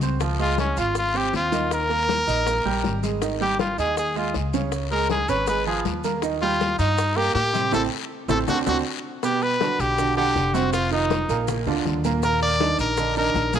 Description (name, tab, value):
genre	Afro-Cuban jazz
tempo	160 BPM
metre	4/4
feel	straight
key	Eb major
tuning	A4 = 440 Hz
part	brilliant trumpet	melody	0.0-13.6 s	Db4 to D5	-24 LUFS	left 1 dB	none
part	clear baby grand piano	accompaniment	0.0-13.6 s	Bb2 to F#5	-26 LUFS	right 8 dB	none
part	upright bass	bass	0.0-13.6 s	F1 to A2	-27 LUFS	left 1 dB	none
part	congas	percussion	0.0-13.6 s	none	-33 LUFS	left 12 dB	none
part	guiro	percussion	0.0-13.6 s	none	-36 LUFS	left 13 dB	none
part	maracas	percussion	0.0-13.6 s	none	-42 LUFS	right 10 dB	none
part	bongos	percussion	0.2-13.5 s	none	-32 LUFS	left 13 dB	none
room	moderate echo chamber reverb, RT60 2.4 s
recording	1960s-style stereo with parts hard left and right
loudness	-20 LUFS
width	side -8 dB against mid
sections	0.0-9.2 A section; 9.2-13.6 B section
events	drum fill 7.7-9.2; band accent 7.7-9.2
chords	0.2 Dbmaj7; 1.7 Eb; 3.2 Ab5; 4.7 Dbadd9; 6.2 Ebadd9; 7.7 Am; 8.5 D7; 9.2 Gmaj7; 10.7 F5; 11.5 Bb; 12.2 Eb5